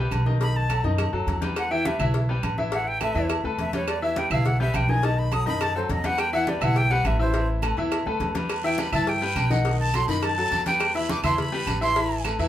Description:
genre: latin, salsa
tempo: 208 BPM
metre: 4/4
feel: straight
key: E minor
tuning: A4 = 440 Hz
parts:
  - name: bright upright piano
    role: accompaniment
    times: 0.0-12.5 s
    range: D#3 to E5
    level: -27 LUFS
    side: left 2 dB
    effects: none
  - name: upright bass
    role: bass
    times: 0.0-12.5 s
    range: A1 to G2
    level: -26 LUFS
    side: equal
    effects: none
  - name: agogo bells and timbales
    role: percussion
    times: 0.1-12.5 s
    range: none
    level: -33 LUFS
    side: right 3 dB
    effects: none
  - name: claves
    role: percussion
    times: 0.1-12.4 s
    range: none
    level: -35 LUFS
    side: right 9 dB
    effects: none
  - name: congas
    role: percussion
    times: 0.1-12.5 s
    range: none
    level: -33 LUFS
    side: equal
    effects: none
  - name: cowbell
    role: percussion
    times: 0.1-12.4 s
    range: none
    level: -35 LUFS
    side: left 3 dB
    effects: none
  - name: breathy bright jazz flute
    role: melody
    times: 0.4-12.2 s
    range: C5 to D#6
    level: -26 LUFS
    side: equal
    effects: none
  - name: guiro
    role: percussion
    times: 8.5-12.5 s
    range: none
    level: -38 LUFS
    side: right 5 dB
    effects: none
room: wet studio ambience, RT60 0.5 s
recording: band playing live in one room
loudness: -21 LUFS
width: side -12 dB against mid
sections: 0.0-12.5 A section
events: flute solo 0.0-12.5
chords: 0.4 B7; 1.6 Em; 2.7 Asus2; 3.9 Em; 5.0 B7; 6.2 Em; 7.3 Asus2; 8.5 Em; 9.7 B7; 10.8 Em; 12.0 Amadd9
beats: 0.12 | 0.41 0.70 0.99 1.27 | 1.56 1.85 2.14 2.43 | 2.72 3.01 3.30 3.59 | 3.88 4.17 4.45 4.74 | 5.03 5.32 5.61 5.90 | 6.18 6.47 6.76 7.05 | 7.34 7.63 7.92 8.21 | 8.49 8.78 9.07 9.36 | 9.65 9.94 10.23 10.52 | 10.80 11.09 11.38 11.67 | 11.96 12.25

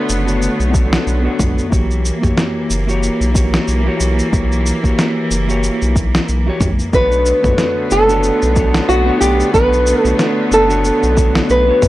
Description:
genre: sunset chillout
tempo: 92 BPM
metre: 4/4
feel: swing 57% on 16ths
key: B minor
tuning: A4 = 441 Hz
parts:
  - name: mellow electric guitar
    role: accompaniment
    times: 0.0-11.9 s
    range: A#3 to C#5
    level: -21 LUFS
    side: equal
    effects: auto-pan, low-pass filter, analog delay
  - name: clear studio string section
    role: sustained chords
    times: 0.0-11.9 s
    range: D3 to B3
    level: -21 LUFS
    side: equal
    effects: none
  - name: round analog bass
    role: bass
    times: 0.1-11.9 s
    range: F#1 to B1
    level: -17 LUFS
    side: equal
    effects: none
  - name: dusty soul sampler-style drum kit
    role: drums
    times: 0.1-11.9 s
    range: cabasa, snare drum, toms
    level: -20 LUFS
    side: equal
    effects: overdrive, studio reverb
  - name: electronic kick drum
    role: drums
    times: 0.7-11.9 s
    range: none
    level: -16 LUFS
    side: equal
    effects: overdrive, studio reverb
  - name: nylon-string guitar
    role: melody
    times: 6.9-11.9 s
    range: F#4 to B4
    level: -14 LUFS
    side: equal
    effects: analog delay
room: little or no reverb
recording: dry, gritty hardware recording, transformer saturation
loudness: -12 LUFS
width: side -16 dB against mid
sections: 0.0-11.9 A section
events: none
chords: 0.0 Bm9; 1.7 F#7b9; 6.9 Bm9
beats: 0.41 1.07 | 1.72 2.37 3.02 3.67 | 4.33 4.98 5.63 6.28 | 6.93 7.59 8.24 8.89 | 9.54 10.20 10.85 11.50

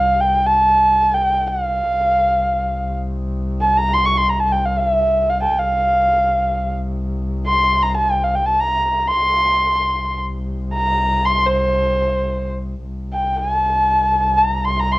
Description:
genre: Turkish makam ensemble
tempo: free time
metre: none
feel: none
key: C makam hicaz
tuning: A4 = 440 Hz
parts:
  - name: dark kamancheh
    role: melody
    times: 0.0-15.0 s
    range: C5 to Db6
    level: -15 LUFS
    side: equal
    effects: cassette tape
  - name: rich double bass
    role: drone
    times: 0.0-15.0 s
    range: C2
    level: -23 LUFS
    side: equal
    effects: stereo widening, cassette tape
room: moderate studio reverb, RT60 0.6 s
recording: home recording on cassette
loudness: -15 LUFS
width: side -19 dB against mid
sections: 0.0-12.8 A section; 12.8-15.0 A section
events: none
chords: none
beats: free time

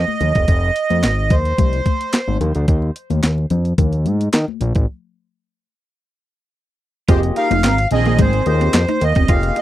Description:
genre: early-eighties boogie funk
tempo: 109 BPM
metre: 4/4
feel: straight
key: F minor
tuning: A4 = 439 Hz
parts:
  - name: accordion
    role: melody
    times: 0.0-2.4, 7.4-9.6 s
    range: C5 to F5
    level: -20 LUFS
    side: right 2 dB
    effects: none
  - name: fat analog bass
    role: bass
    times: 0.0-9.5 s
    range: E1 to Eb3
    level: -18 LUFS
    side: equal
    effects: none
  - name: congas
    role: percussion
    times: 0.1-9.6 s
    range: none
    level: -26 LUFS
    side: left 10 dB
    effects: none
  - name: clean 12-bit digital drum machine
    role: drums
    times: 0.2-9.6 s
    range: handclaps, hi-hat, kick drum, snare drum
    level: -17 LUFS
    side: equal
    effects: overdrive
  - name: analog synth brass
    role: second line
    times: 7.1-8.4 s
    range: Eb3 to C5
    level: -22 LUFS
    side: equal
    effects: chorus, phaser
  - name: barky tine electric piano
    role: accompaniment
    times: 7.1-9.6 s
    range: Bb3 to Eb5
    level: -23 LUFS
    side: left 5 dB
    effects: overdrive, phaser
  - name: clean electric guitar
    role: riff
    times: 7.1-9.6 s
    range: Ab3 to F4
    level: -22 LUFS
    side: right 9 dB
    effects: lush chorus
room: little or no reverb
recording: dry, close 1970s-style studio recording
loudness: -14 LUFS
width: side -14 dB against mid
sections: 0.0-7.1 A section; 7.1-9.6 B section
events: break 4.9-7.1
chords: 0.0 Fm7; 2.4 Ebsus4; 4.6 N.C.; 7.1 Fm11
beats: | 0.48 1.03 1.58 2.13 | 2.68 3.23 3.78 4.33 | 4.88 5.43 5.99 6.54 | 7.09 7.64 8.19 8.74 | 9.29

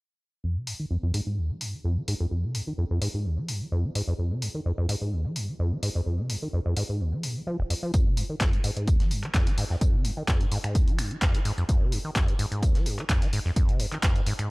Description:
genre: acid house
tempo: 128 BPM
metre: 4/4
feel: swing 53% on 16ths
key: F minor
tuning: A4 = 441 Hz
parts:
  - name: deep acid bass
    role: riff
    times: 0.4-14.5 s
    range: F1 to F3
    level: -28 LUFS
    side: equal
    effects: tube saturation, sidechain pumping
  - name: punchy analog drum machine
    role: drums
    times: 0.7-14.5 s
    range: finger snaps, handclaps, hi-hat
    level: -33 LUFS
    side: equal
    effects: none
  - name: breakbeat sampler-style drum kit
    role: drums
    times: 7.9-14.4 s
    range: hi-hat, snare drum, tambourine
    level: -41 LUFS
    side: equal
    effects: none
  - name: electronic kick drum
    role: drums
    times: 7.9-14.1 s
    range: none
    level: -24 LUFS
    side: equal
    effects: none
room: digital ambience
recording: dry, gritty hardware recording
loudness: -24 LUFS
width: side -26 dB against mid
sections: 0.4-14.5 A section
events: filter sweep on acid bass 0.4-14.5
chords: none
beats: | 0.44 0.91 1.38 1.84 | 2.31 2.78 3.25 3.72 | 4.19 4.66 5.12 5.59 | 6.06 6.53 7.00 7.47 | 7.94 8.41 8.88 9.34 | 9.81 10.28 10.75 11.22 | 11.69 12.16 12.62 13.09 | 13.56 14.03 14.50

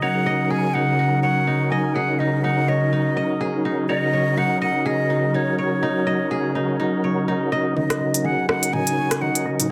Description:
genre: afro house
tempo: 124 BPM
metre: 4/4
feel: swing 57% on 16ths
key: Eb minor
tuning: A4 = 440 Hz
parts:
  - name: breathy silver concert flute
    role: melody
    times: 0.0-9.5 s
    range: Db5 to Ab5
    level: -27 LUFS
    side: equal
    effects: dub echo
  - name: ethereal airy pad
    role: sustained chords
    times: 0.0-9.7 s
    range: Db3 to Gb4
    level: -26 LUFS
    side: equal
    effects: ensemble chorus, built-in reverb
  - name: kora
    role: arpeggios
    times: 0.0-9.7 s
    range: Eb4 to Eb5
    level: -29 LUFS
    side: equal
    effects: low-pass filter, dub echo
  - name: percussive tonewheel organ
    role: stabs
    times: 0.0-9.7 s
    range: Db4 to Bb4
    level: -27 LUFS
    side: equal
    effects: chorus vibrato, fast rotary speaker, low-pass filter
  - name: smooth synth bass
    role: bass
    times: 7.8-9.7 s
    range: none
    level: barely audible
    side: none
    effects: none
  - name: afro-pop drum kit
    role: drums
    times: 7.8-9.7 s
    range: hi-hat, rim click, toms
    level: -26 LUFS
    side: equal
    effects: high-pass filter on toms, small room ambience, high-pass filter on snare, high-pass filter on hats
room: moderate plate reverb, RT60 1.6 s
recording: none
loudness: -21 LUFS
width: mono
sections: 0.0-7.8 A section; 7.8-9.7 B section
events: build-up 7.8-9.7; drum fill 7.8-9.7; filter sweep on kora 7.8-9.7; filter sweep on tonewheel organ 7.8-9.7; filter sweep on ambient pad 7.8-9.7; filter sweep 7.8-9.7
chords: 0.0 Ebm7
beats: | 0.02 0.51 0.99 1.47 | 1.96 2.44 2.92 3.41 | 3.89 4.38 4.86 5.34 | 5.83 6.31 6.79 7.28 | 7.76 8.25 8.73 9.21 | 9.70

